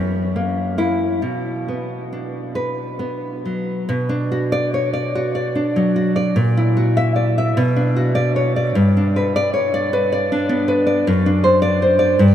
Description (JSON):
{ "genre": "romantic piece for solo classical guitar", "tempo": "44-54 BPM (dotted quarters)", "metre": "6/8", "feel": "rubato", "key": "B minor", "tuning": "A4 = 441 Hz", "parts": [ { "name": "nylon-string guitar", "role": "solo", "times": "0.0-12.3 s", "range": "F#2 to E5", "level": "-16 LUFS", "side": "equal", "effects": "none" } ], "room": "wet huge ambient reverb, RT60 7.3 s", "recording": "in a vast, echoing space", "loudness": "-16 LUFS", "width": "side -10 dB against mid", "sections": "0.0-3.9 A section; 3.9-12.3 B section", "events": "none", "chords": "0.0 F#7; 1.2 Bm; 6.4 F#7/A#; 7.6 Bm; 8.8 G; 11.1 D7/F#", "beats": "| 1.23 2.57 | 3.88 5.14 | 6.36 7.57 | 8.76 9.92 | 11.07 12.20" }